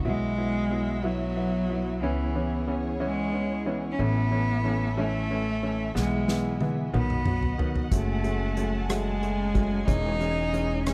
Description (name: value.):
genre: six-eight pop ballad.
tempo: 61 BPM (dotted quarters).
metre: 6/8.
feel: straight.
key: unclear.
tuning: A4 = 437 Hz.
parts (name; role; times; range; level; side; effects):
clear upright piano; accompaniment; 0.0-10.9 s; D#3 to E4; -34 LUFS; equal; none.
dark studio string section; sustained chords; 0.0-10.9 s; G#3 to A5; -39 LUFS; equal; none.
upright bass; bass; 0.0-10.9 s; E1 to C#2; -33 LUFS; equal; none.
clear cello; melody; 0.1-10.9 s; E3 to D#4; -32 LUFS; equal; tape echo.
unplugged drum kit; drums; 6.0-10.9 s; hi-hat, kick drum, rim click, snare drum, toms; -31 LUFS; equal; none.
room: little or no reverb.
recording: dark, warm production.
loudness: -27 LUFS.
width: mono.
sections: 0.1-10.9 A section.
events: drum fill 6.0-7.9.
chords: 0.1 Bsus4; 2.0 C#m7; 4.0 A; 6.0 E/B; 6.9 B; 7.9 F#madd9; 9.9 C#m/E.